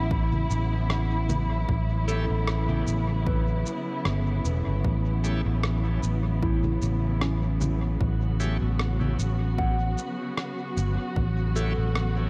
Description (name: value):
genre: ambient dub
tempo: 76 BPM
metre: 4/4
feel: swing 55% on 16ths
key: A mixolydian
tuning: A4 = 440 Hz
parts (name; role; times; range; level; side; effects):
- muted studio string section; sustained chords; 0.0-12.3 s; C#3 to F#4; -34 LUFS; equal; none
- soft synth bell; arpeggios; 0.0-12.3 s; C#4 to F#5; -40 LUFS; equal; chorus, tape echo
- fingered electric bass; bass; 0.0-12.3 s; E1 to A1; -28 LUFS; equal; none
- electronic kick drum; drums; 0.1-11.3 s; none; -32 LUFS; equal; overdrive
- electronic congas, shaker and rim click; drums; 0.3-12.1 s; none; -36 LUFS; equal; dub echo
- bright tonewheel organ; stabs; 2.1-11.7 s; A3 to G4; -43 LUFS; equal; overdrive, slow rotary speaker, vintage 12-bit sampler grit, dub echo
room: light reverb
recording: none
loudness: -26 LUFS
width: mono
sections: 0.0-12.3 A section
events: none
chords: 0.0 A7